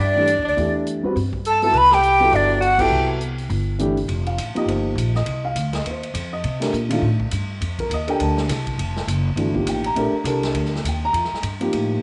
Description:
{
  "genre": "modal jazz",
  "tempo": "204 BPM",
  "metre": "4/4",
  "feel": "swing 59% on 8ths",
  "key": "F mixolydian from 4.1 s",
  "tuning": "A4 = 439 Hz",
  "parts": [
    { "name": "breathy jazz flute", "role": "melody", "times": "0.0-3.1 s", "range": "D5 to B5", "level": "-18 LUFS", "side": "equal", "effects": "none" },
    { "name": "edgy alto saxophone", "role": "second line", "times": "0.0-3.1 s", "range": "D4 to B4", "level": "-27 LUFS", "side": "equal", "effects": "none" },
    { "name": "upright bass", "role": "bass", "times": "0.0-12.0 s", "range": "F1 to C3", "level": "-26 LUFS", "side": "equal", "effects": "none" },
    { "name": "dark upright piano", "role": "accompaniment", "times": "0.2-12.0 s", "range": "Eb3 to Bb5", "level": "-26 LUFS", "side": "equal", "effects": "none" },
    { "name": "swinging big-band drum kit", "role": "drums", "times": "0.3-11.8 s", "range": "crash cymbal, hi-hat, kick drum, ride cymbal, snare drum", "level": "-34 LUFS", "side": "equal", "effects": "none" }
  ],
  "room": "moderate echo chamber reverb, RT60 1.3 s",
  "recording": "nothing above 10.8 kHz",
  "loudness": "-21 LUFS",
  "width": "mono",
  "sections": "0.0-4.1 A section; 4.1-12.0 B section",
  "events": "band accent 2.8",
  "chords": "0.0 Cmaj9; 4.1 F9sus4",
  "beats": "0.28 | 0.57 0.86 1.16 1.45 | 1.74 2.04 2.33 2.62 | 2.92 3.21 3.50 3.80 | 4.09 4.38 4.68 4.97 | 5.26 5.56 5.85 6.14 | 6.44 6.73 7.03 7.32 | 7.61 7.91 8.20 8.49 | 8.79 9.08 9.37 9.67 | 9.96 10.26 10.55 10.84 | 11.14 11.43 11.72"
}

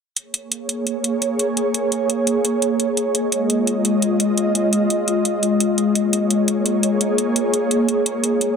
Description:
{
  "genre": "liquid drum and bass",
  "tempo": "171 BPM",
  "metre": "4/4",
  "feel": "straight",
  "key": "Bb minor",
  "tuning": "A4 = 439 Hz",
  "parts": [
    { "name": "ethereal airy pad", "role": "sustained chords", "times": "0.5-8.6 s", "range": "Ab3 to Eb5", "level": "-18 LUFS", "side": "equal", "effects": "ensemble chorus, built-in reverb, vintage 12-bit sampler grit" },
    { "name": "electronic hi-hat", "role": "drums", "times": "0.2-8.5 s", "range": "none", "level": "-21 LUFS", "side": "right 1 dB", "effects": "none" }
  ],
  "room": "wet recital hall reverb, RT60 1.4 s",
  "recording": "dense, heavily limited modern master",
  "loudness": "-17 LUFS",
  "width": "side -6 dB against mid",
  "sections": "0.2-8.6 A section",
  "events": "none",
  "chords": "0.2 Bbm7; 3.0 Fm7; 5.8 Bbm7",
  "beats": "| 0.17 0.52 0.87 1.22 | 1.57 1.92 2.27 2.62 | 2.98 3.33 3.68 4.03 | 4.38 4.73 5.08 5.43 | 5.78 6.13 6.48 6.83 | 7.18 7.54 7.89 8.24"
}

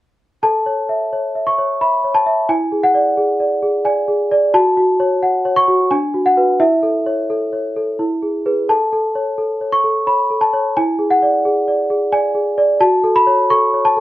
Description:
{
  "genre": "classical, lullaby for celesta",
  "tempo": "87 BPM",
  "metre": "3/4",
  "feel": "straight",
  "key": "A major",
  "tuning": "A4 = 439 Hz",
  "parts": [
    { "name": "worn celesta", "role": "solo", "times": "0.4-14.0 s", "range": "D4 to C#6", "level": "-14 LUFS", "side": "equal", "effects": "none" }
  ],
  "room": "light reverb",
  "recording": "dark, warm production",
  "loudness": "-14 LUFS",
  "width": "side -15 dB against mid",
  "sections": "0.4-14.0 A section",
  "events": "none",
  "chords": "0.4 A; 2.5 E7; 4.5 F#m; 5.9 Bm/D; 6.6 A/E; 8.0 E; 8.7 A; 10.8 E7; 12.8 F#m",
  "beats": "| 0.43 1.13 1.81 | 2.49 3.17 3.86 | 4.54 5.22 5.91 | 6.61 7.31 8.01 | 8.70 9.39 10.08 | 10.76 11.45 12.13 | 12.82 13.51"
}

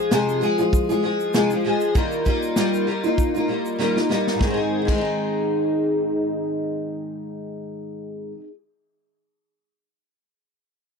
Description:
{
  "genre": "acoustic pop",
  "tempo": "98 BPM",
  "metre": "4/4",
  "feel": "swing 55% on 16ths",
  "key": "Ab major",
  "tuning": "A4 = 440 Hz",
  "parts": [
    { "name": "picked steel-string acoustic guitar", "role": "accompaniment", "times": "0.0-8.5 s", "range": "F2 to Ab4", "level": "-21 LUFS", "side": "left 1 dB", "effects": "double-tracked left and right" },
    { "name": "natural country drum kit", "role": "drums", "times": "0.1-5.0 s", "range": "crash cymbal, kick drum, shaker, snare drum", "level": "-24 LUFS", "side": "equal", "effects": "none" }
  ],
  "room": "studio reverb",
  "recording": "dry, close 1970s-style studio recording",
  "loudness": "-19 LUFS",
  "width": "side -5 dB against mid",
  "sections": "0.0-4.4 A section; 4.4-6.9 B section",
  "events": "drum fill 3.8-4.4",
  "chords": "0.0 Fm; 2.0 Ebadd9; 4.4 Ab",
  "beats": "0.12 0.73 1.34 | 1.95 2.57 3.18 3.79 | 4.41 5.02 5.63 6.25"
}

